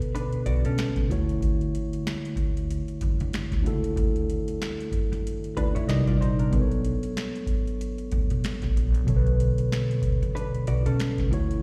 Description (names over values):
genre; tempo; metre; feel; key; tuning
R&B, neo-soul; 94 BPM; 4/4; swing 58% on 16ths; B minor; A4 = 440 Hz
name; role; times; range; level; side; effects
mellow tine electric piano; accompaniment; 0.0-11.6 s; B2 to D5; -30 LUFS; equal; slapback echo
upright bass; bass; 0.0-11.6 s; Bb1 to D3; -31 LUFS; equal; none
booming analog drum machine; drums; 0.0-11.6 s; finger snaps, hi-hat, kick drum, snare drum; -31 LUFS; equal; overdrive
hollow-body jazz guitar; second line; 0.1-1.1, 5.6-11.3 s; C#4 to Eb5; -35 LUFS; equal; slapback echo
room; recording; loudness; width
light reverb; live gig heard through the venue's PA, recital hall reverb; -26 LUFS; mono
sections
0.0-11.6 A section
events
none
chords
0.0 Bm7; 1.1 Dmaj7; 5.9 Cm7; 6.5 Bm7